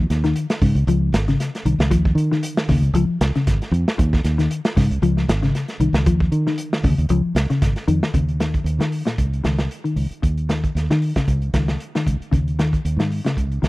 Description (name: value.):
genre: afrobeat.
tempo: 116 BPM.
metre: 4/4.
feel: swing 54% on 16ths.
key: unclear.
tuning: A4 = 435 Hz.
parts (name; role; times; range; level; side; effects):
mellow electric guitar; arpeggios; 0.0-13.7 s; Bb2 to F3; -22 LUFS; left 2 dB; analog chorus.
fingered electric bass; bass; 0.0-13.7 s; Ab1 to Eb3; -20 LUFS; right 1 dB; none.
crunchy breakbeat drum kit; drums; 0.1-13.7 s; hi-hat, kick drum, snare drum; -22 LUFS; right 1 dB; none.
room: little or no reverb.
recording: dry, close 1970s-style studio recording.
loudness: -17 LUFS.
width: side -19 dB against mid.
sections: 0.0-8.1 A section; 8.1-13.7 B section.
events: none.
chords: 0.0 Eb7sus4; 0.9 Dbadd9; 4.0 Eb7(no3); 5.0 Dbmaj9; 6.1 Dbadd9/Eb; 7.1 Dbadd9; 8.1 Eb5; 9.2 Dbsus2; 10.2 N.C.; 11.3 Dbsus2; 12.3 Eb7sus4.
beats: 0.36 0.88 1.40 | 1.91 2.43 2.95 3.47 | 3.99 4.51 5.03 5.55 | 6.07 6.59 7.11 7.63 | 8.15 8.67 9.19 9.71 | 10.23 10.75 11.27 11.79 | 12.31 12.84 13.36.